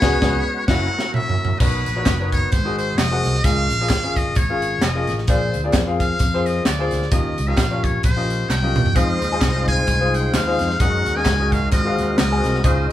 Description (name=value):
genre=uptempo gospel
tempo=130 BPM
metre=4/4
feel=swing 57% on 8ths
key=Ab major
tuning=A4 = 436 Hz
part: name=trumpet with metal mute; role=melody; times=0.0-12.9 s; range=B4 to Ab5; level=-24 LUFS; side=left 1 dB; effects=none
part: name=clear upright piano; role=accompaniment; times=0.0-12.9 s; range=Ab2 to Ab5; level=-24 LUFS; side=left 2 dB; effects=none
part: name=percussive tonewheel organ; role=sustained chords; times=0.0-1.6, 9.0-12.9 s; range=F#3 to Eb5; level=-26 LUFS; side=equal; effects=slow rotary speaker, chorus vibrato
part: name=fingered electric bass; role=bass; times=0.0-12.9 s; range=F1 to Gb2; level=-23 LUFS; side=equal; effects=none
part: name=tight funk drum kit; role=drums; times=0.0-12.8 s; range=crash cymbal, hi-hat, kick drum, snare drum, toms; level=-21 LUFS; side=equal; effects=none
part: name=tambourine and handclaps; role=percussion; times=1.6-12.8 s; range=none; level=-32 LUFS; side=right 3 dB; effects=none
room=moderate stone room reverb, RT60 1.2 s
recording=band playing live in one room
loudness=-17 LUFS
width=side -12 dB against mid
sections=0.0-1.6 A section; 1.6-12.9 A section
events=band accent 0.0-1.6; drum fill 0.7-1.6, 8.5-9.0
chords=0.0 C#7sus4; 0.7 F#7; 1.6 Bmaj9; 2.5 Ab9; 3.4 Db69; 5.3 Bb9; 7.1 Eb9; 9.0 Fm7; 10.8 Gb69; 11.7 Ab13